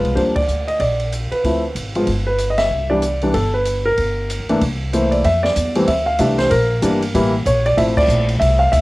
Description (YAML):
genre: jazz piano trio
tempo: 189 BPM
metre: 4/4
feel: swing 61% on 8ths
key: C major, F major from 5.2 s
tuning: A4 = 440 Hz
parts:
  - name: warm concert grand piano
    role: melody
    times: 0.0-8.8 s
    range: E3 to F5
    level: -17 LUFS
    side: equal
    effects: none
  - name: upright bass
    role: bass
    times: 0.0-8.8 s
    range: G1 to G2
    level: -21 LUFS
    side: equal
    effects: none
  - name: open jazz drum kit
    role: drums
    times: 0.0-8.8 s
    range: crash cymbal, hi-hat, kick drum, ride cymbal, snare drum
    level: -26 LUFS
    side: equal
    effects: cassette tape
room: light reverb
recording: home recording on cassette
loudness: -15 LUFS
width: side -20 dB against mid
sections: 0.0-5.2 A section; 5.2-8.8 B section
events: band accent 0.3, 2.6, 7.9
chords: 0.2 Ebmaj7(no3); 1.4 Dm9; 2.1 G6; 2.7 Cmaj9; 4.0 Gm; 4.6 C6; 5.2 Fmaj9; 6.5 Em7b5; 7.1 A5; 7.8 Dm7